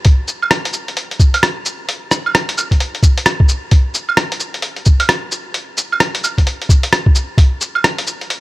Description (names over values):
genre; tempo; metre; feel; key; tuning
future garage; 131 BPM; 4/4; swing 62% on 16ths; none; none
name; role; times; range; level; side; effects
lo-fi sampler-style drum kit; drums; 0.0-8.4 s; cabasa, claves, hi-hat, rim click; -16 LUFS; equal; small room ambience
electronic kick drum; drums; 0.1-7.5 s; none; -10 LUFS; equal; small room ambience
room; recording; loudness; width
digital ambience; none; -13 LUFS; side -19 dB against mid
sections
0.0-8.4 A section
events
none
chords
none